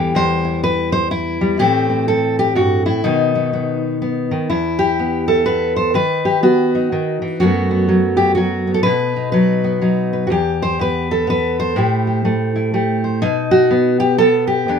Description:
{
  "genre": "folk, solo fingerstyle acoustic guitar",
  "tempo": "124 BPM",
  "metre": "3/4",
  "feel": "swing 62% on 8ths",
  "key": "E harmonic minor",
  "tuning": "A4 = 442 Hz",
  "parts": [
    { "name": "fingerpicked steel-string acoustic guitar", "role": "solo", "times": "0.0-14.8 s", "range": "E2 to C5", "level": "-14 LUFS", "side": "equal", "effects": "none" }
  ],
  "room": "light reverb",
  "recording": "minimal, uncompressed stereo recording",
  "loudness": "-14 LUFS",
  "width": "side -6 dB against mid",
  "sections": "0.0-4.5 A section; 4.5-14.8 B section",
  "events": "none",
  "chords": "0.1 C/E; 1.6 Am; 3.0 B; 4.5 Em; 5.9 B/D#; 7.4 F#madd11; 8.9 B; 10.3 Em; 11.8 Am7; 13.2 N.C."
}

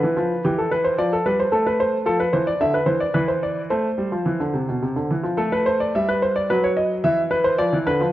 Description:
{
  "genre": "classical, baroque-style two-part invention for grand piano",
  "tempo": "110 BPM",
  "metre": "3/4",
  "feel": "straight",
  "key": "A minor",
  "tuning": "A4 = 440 Hz",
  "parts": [
    { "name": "warm concert grand piano", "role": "solo", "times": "0.0-8.1 s", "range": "B2 to E5", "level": "-18 LUFS", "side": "equal", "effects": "none" }
  ],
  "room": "moderate recital hall reverb, RT60 1.6 s",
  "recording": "worn, warbling old tape, cassette tape, warbly pitch drift",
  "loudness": "-18 LUFS",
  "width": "side -14 dB against mid",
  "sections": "0.0-5.4 A section; 5.4-8.1 B section",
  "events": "none",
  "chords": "0.4 Em7; 1.5 Am; 2.1 Dm/F; 2.6 Cmaj9/D; 3.2 E5; 3.7 Am (rootless); 5.4 Am; 6.5 B/F#; 7.0 E5"
}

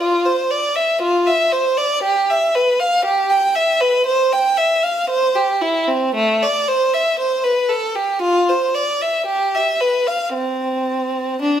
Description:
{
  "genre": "classical, baroque-style suite movement for unaccompanied violin",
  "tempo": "58 BPM",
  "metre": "4/4",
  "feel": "rubato",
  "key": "unclear",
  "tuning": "A4 = 440 Hz",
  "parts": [
    { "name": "clear violin", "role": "solo", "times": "0.0-11.6 s", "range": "A3 to G5", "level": "-15 LUFS", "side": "equal", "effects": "none" }
  ],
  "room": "wet stone room reverb, RT60 1.1 s",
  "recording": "heard from further back in the room",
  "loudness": "-15 LUFS",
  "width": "side -9 dB against mid",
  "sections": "0.0-11.6 A section",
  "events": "none",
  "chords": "none"
}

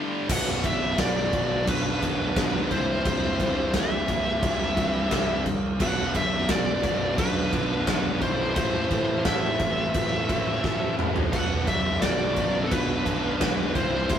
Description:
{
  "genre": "heavy metal",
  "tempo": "87 BPM",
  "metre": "4/4",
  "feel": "straight",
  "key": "B phrygian",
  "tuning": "A4 = 440 Hz",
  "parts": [
    { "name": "brassy analog pad", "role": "sustained chords", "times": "0.0-14.2 s", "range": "B2 to F#5", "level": "-41 LUFS", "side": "equal", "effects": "none" },
    { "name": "heavy high-gain guitar", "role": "riff", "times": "0.0-14.2 s", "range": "B1 to A3", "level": "-36 LUFS", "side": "right 6 dB", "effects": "none" },
    { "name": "scooped high-gain guitar", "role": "riff", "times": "0.0-14.2 s", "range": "B1 to G3", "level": "-35 LUFS", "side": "left 6 dB", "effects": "distortion" },
    { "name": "tight distorted guitar", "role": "riff", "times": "0.0-14.2 s", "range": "B1 to A4", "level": "-32 LUFS", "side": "equal", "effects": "distortion" },
    { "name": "high-gain lead guitar", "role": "melody", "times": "0.3-14.2 s", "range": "A4 to F#5", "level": "-28 LUFS", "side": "equal", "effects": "distortion" },
    { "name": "high-gain lead guitar", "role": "second line", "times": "0.3-14.2 s", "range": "C4 to B4", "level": "-35 LUFS", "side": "right 2 dB", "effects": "distortion" },
    { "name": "fuzz picked electric bass", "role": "bass", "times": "0.3-14.2 s", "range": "B0 to C2", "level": "-31 LUFS", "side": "equal", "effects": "overdrive" },
    { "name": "big rock drum kit", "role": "drums", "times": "0.3-14.2 s", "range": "crash cymbal, kick drum, snare drum, toms", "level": "-26 LUFS", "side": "equal", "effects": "none" }
  ],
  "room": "light reverb",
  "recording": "rough rehearsal-room recording",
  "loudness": "-22 LUFS",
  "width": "side -9 dB against mid",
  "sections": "0.3-14.2 A section",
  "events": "break 0.0; drum fill 10.6-11.3",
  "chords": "0.3 Bm; 2.7 C; 5.8 Bm; 8.6 Am; 11.3 Bm"
}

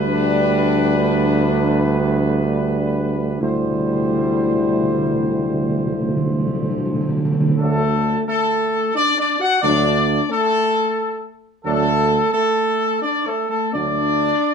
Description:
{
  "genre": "classical, ceremonial fanfare",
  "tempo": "88 BPM",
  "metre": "3/4",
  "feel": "straight",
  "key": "D mixolydian",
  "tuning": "A4 = 441 Hz",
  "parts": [
    { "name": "mellow trumpet section", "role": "melody", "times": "0.0-14.5 s", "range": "A4 to F#5", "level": "-21 LUFS", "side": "equal", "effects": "none" },
    { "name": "warm French horn section", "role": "sustained chords", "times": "0.0-14.5 s", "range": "A3 to F#4", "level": "-23 LUFS", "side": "left 6 dB", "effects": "none" },
    { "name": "warm trombone section", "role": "sustained chords", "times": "0.0-14.0 s", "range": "F#3 to D4", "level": "-26 LUFS", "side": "right 3 dB", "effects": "none" },
    { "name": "warm tuba", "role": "bass", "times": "0.0-14.3 s", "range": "D2", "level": "-20 LUFS", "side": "right 3 dB", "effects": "none" },
    { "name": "timpani", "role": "percussion", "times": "3.4-7.6 s", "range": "D3", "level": "-22 LUFS", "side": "right 2 dB", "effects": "none" }
  ],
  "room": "light reverb",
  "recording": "dark, warm production",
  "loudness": "-16 LUFS",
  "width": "side -6 dB against mid",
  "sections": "0.0-7.6 A section; 7.6-14.5 B section",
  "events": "timpani fill 3.4-7.6",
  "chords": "0.0 G/D; 3.4 C/D; 7.6 D"
}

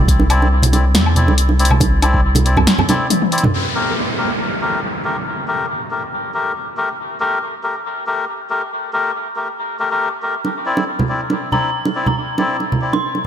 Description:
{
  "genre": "deep dubstep",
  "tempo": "139 BPM",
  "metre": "4/4",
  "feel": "swing 54% on 16ths, half-time",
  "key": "G dorian",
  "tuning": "A4 = 440 Hz",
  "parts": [
    { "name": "saturated sub bass", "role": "bass", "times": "0.0-2.7 s", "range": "C2 to E2", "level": "-14 LUFS", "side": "equal", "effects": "none" },
    { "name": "deep house drum kit", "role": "drums", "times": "0.1-3.5 s", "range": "hi-hat, snare drum, toms, woodblock", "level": "-18 LUFS", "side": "left 1 dB", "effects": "overdrive, low-pass filter on hats, low-pass filter on perc, low-pass filter on snare, low-pass filter on toms, low-pass filter on room" },
    { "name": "electronic kick drum", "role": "drums", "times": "0.1-2.2 s", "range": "none", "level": "-16 LUFS", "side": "equal", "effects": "overdrive" },
    { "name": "bongos and congas", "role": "percussion", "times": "0.2-3.5, 10.4-13.3 s", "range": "none", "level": "-19 LUFS", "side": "right 3 dB", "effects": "dub echo" },
    { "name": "melodica", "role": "stabs", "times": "0.3-13.3 s", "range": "A3 to D5", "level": "-20 LUFS", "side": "left 2 dB", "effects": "vintage 12-bit sampler grit, dub echo" },
    { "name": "downlifter", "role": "sound effects", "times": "3.5-7.0 s", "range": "none", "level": "-23 LUFS", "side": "right 1 dB", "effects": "none" },
    { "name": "dark detuned synth bell", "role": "melody", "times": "11.5-13.3 s", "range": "Bb5 to C6", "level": "-22 LUFS", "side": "left 1 dB", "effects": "chorus, phaser, dub echo" }
  ],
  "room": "moderate echo chamber reverb, RT60 2.4 s",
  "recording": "none",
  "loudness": "-15 LUFS",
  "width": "side -9 dB against mid",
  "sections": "0.0-3.5 A section; 3.5-13.3 B section",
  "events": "drum fill 3.1-3.5",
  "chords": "0.0 Cadd9; 3.5 Gmadd9; 10.4 Cadd9"
}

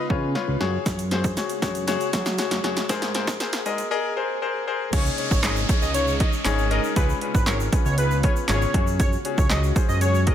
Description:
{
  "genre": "dance-pop",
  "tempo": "118 BPM",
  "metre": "4/4",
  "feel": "straight",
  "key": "Db major",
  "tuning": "A4 = 441 Hz",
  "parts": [
    { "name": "clear grand piano", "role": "accompaniment", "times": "0.0-10.3 s", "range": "Db4 to Eb5", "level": "-27 LUFS", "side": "left 7 dB", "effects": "sidechain pumping" },
    { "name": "ethereal airy pad", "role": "sustained chords", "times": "0.0-10.3 s", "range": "C3 to Ab4", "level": "-34 LUFS", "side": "right 2 dB", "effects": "ensemble chorus, built-in reverb, sidechain pumping" },
    { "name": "fat analog bass", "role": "bass", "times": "0.1-10.3 s", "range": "Ab1 to Gb3", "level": "-25 LUFS", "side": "right 1 dB", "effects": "sidechain pumping" },
    { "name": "punchy analog drum machine", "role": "drums", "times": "0.1-10.3 s", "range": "crash cymbal, handclaps, hi-hat, kick drum, snare drum", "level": "-24 LUFS", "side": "right 1 dB", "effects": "overdrive" },
    { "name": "egg shaker", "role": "percussion", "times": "0.9-10.3 s", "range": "none", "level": "-39 LUFS", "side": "right 10 dB", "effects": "none" },
    { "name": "wide unison lead", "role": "melody", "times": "4.9-10.3 s", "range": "Cb5 to Eb5", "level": "-29 LUFS", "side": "right 1 dB", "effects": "sidechain pumping, dub echo" },
    { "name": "downlifter", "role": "sound effects", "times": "4.9-9.0 s", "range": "none", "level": "-32 LUFS", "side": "right 1 dB", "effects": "none" }
  ],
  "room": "light reverb, digital ambience",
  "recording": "high-pass filter",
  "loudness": "-20 LUFS",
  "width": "side -10 dB against mid",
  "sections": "0.0-4.9 A section; 4.9-10.3 B section",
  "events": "build-up 0.0-4.9; drum fill 0.0-3.9; filter sweep 0.0-4.9; drop 4.9-10.3",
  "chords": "0.0 Db7; 0.6 Gbsus2; 2.9 Abadd9; 4.9 Dbsus2; 7.0 Db7; 8.7 Gbsus2"
}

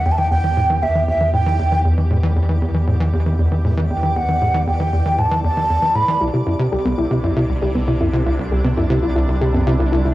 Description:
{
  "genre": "ambient, sequencer-driven space music",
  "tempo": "117 BPM",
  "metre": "4/4",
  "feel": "straight",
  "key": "E minor",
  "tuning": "A4 = 440 Hz",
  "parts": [
    { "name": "mellow hollow concert flute", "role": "melody", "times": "0.0-6.2 s", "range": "E5 to B5", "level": "-19 LUFS", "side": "right 2 dB", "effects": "cassette tape, analog delay" },
    { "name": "sweeping resonant pad", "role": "sustained chords", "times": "0.0-10.1 s", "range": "C3 to G4", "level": "-30 LUFS", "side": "right 1 dB", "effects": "chorus, cassette tape" },
    { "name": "warm sub bass", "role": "bass", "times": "0.0-10.1 s", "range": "C2 to E2", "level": "-20 LUFS", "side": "equal", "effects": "none" },
    { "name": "twinkling granular texture", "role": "texture", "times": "0.0-10.1 s", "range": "D5", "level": "-35 LUFS", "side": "right 1 dB", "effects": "built-in reverb, cassette tape" },
    { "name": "tight sequencer bass", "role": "riff", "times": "0.1-10.1 s", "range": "C2 to E3", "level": "-20 LUFS", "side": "equal", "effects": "lush chorus, cassette tape, analog delay" },
    { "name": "soft round pluck", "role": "arpeggios", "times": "6.2-10.1 s", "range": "B3 to G4", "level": "-21 LUFS", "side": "left 1 dB", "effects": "chorus, auto-pan, cassette tape, analog delay" }
  ],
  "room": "wet small room reverb, RT60 0.5 s",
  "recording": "home recording on cassette",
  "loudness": "-15 LUFS",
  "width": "side -16 dB against mid",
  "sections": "0.0-10.1 A section",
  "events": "fade-in on analog synth pad 0.0-10.1; fade-in on synth texture 0.0-10.1",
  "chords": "0.0 Em7; 6.2 Cadd9"
}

